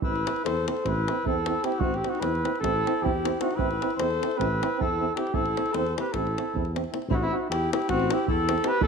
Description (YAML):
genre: balkan folk, Balkan brass band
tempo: 307 BPM (eighths)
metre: 9/8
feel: straight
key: A dorian sharp4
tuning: A4 = 436 Hz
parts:
  - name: mellow flugelhorn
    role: melody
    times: 0.0-8.9 s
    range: E4 to C5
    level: -28 LUFS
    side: right 2 dB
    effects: none
  - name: clear alto saxophone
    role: second line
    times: 0.0-8.9 s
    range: C4 to A4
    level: -31 LUFS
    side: left 7 dB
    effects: none
  - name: warm French horn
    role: accompaniment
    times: 0.0-8.7 s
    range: E4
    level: -36 LUFS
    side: left 8 dB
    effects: none
  - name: warm euphonium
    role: accompaniment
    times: 0.0-8.7 s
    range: C4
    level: -33 LUFS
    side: right 12 dB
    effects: none
  - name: dark tuba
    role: bass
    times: 0.0-8.9 s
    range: A1 to E2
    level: -31 LUFS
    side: equal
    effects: none
  - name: davul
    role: percussion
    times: 0.0-8.9 s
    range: none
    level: -32 LUFS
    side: equal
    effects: none
room: moderate echo chamber reverb, RT60 1.7 s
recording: 1960s-style stereo with parts hard left and right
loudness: -24 LUFS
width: side -5 dB against mid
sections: 0.0-7.1 A section; 7.1-8.9 B section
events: speeding up 0.0-8.9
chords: 0.0 Am